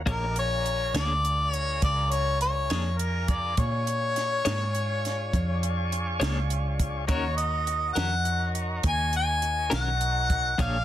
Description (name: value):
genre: slow blues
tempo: 68 BPM (dotted quarters)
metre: 12/8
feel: straight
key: Eb minor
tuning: A4 = 439 Hz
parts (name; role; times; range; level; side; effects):
- tonewheel organ; sustained chords; 0.0-10.8 s; D4 to D5; -36 LUFS; equal; slow rotary speaker
- vintage muted fingered electric bass; bass; 0.0-10.8 s; Bb1 to Bb2; -28 LUFS; equal; none
- mellow harmonica; melody; 0.1-10.8 s; Bb4 to Ab5; -27 LUFS; left 2 dB; none
- clean electric guitar; accompaniment; 0.1-10.8 s; Eb3 to C#5; -32 LUFS; left 4 dB; tremolo
- compact cocktail drum kit; drums; 0.1-10.7 s; hi-hat, kick drum, snare drum; -30 LUFS; right 1 dB; none
room: light reverb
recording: dense, heavily limited modern master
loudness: -24 LUFS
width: side -12 dB against mid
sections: 0.0-10.8 A section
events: none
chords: 0.1 Bb7#9; 7.1 Ebm7